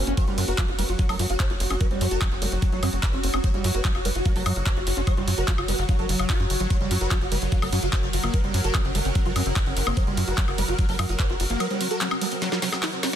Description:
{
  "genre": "psychedelic trance",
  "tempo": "147 BPM",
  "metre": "4/4",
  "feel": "straight",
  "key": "F# major",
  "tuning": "A4 = 440 Hz",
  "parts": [
    { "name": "evolving wavetable pad", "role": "sustained chords", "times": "0.0-13.2 s", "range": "F#3 to A#4", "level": "-32 LUFS", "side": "right 1 dB", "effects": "phaser, built-in reverb, sidechain pumping" },
    { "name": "tight sequencer bass", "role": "bass", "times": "0.0-11.6 s", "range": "F#1 to F#2", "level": "-27 LUFS", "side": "equal", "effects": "none" },
    { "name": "airy breathy pad", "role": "texture", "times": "0.0-13.2 s", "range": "F#4 to F#5", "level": "-36 LUFS", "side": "right 1 dB", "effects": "chorus, sidechain pumping" },
    { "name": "swarming rave lead", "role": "melody", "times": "0.1-13.2 s", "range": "C#4 to C#5", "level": "-32 LUFS", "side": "right 1 dB", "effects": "chorus, phaser, sidechain pumping, dub echo" },
    { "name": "screaming distorted acid line", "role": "riff", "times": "0.1-13.2 s", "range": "F#3 to F#4", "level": "-32 LUFS", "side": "moving between left 2 dB and right 4 dB", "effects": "distortion, chorus, auto-pan, cassette tape, sidechain pumping, tape echo" },
    { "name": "drum and bass drum kit", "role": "drums", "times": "0.1-13.2 s", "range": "handclaps, hi-hat, ride cymbal, snare drum, woodblock", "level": "-29 LUFS", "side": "equal", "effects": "overdrive, small room ambience" },
    { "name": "electronic kick drum", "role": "drums", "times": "0.2-11.3 s", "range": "none", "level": "-24 LUFS", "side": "equal", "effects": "overdrive, small room ambience" },
    { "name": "formant-sweep wobble bass", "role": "second line", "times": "2.4-2.9, 5.7-6.5, 8.9-9.5, 12.2-13.0 s", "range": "F#3 to A#3", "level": "-44 LUFS", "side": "right 5 dB", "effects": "none" }
  ],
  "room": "digital ambience",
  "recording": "dense, heavily limited modern master",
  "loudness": "-21 LUFS",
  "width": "side -10 dB against mid",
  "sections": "0.0-13.2 A section",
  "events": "drum fill 12.4-13.2",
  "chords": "0.0 F#5"
}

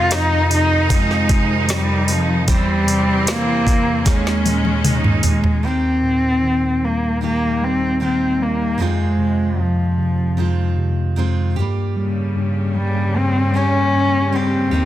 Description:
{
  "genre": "pop ballad",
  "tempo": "76 BPM",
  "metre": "4/4",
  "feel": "straight",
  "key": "unclear",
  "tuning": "A4 = 442 Hz",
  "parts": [
    { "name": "dark cello", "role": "melody", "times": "0.0-14.9 s", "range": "F3 to F4", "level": "-19 LUFS", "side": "equal", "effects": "none" },
    { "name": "bright studio cello section", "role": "second line", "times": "0.0-5.6 s", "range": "C4 to Eb4", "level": "-24 LUFS", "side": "right 3 dB", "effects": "none" },
    { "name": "tine electric piano", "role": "accompaniment", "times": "0.0-14.9 s", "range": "Eb2 to G3", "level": "-20 LUFS", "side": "left 1 dB", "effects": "medium stereo tremolo" },
    { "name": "bright studio string section", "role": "sustained chords", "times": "0.0-5.6, 12.0-14.9 s", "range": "Eb2 to Eb4", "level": "-25 LUFS", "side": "equal", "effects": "none" },
    { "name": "picked steel-string acoustic guitar", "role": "arpeggios", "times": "0.0-14.9 s", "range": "F2 to Ab4", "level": "-28 LUFS", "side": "right 8 dB", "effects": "none" },
    { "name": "smooth R&B drum kit", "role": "drums", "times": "0.1-5.6 s", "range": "hi-hat, kick drum, snare drum, toms", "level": "-19 LUFS", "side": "equal", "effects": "none" }
  ],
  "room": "light reverb, studio ambience",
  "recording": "dense, heavily limited modern master",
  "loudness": "-15 LUFS",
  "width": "side -13 dB against mid",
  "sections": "0.0-5.6 A section; 5.6-14.9 B section",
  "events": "drum fill 4.1-5.6",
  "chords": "0.0 Fm7; 2.5 C/E; 4.1 Eb7sus4; 5.6 Eb; 8.8 Fm7; 11.6 Gdim"
}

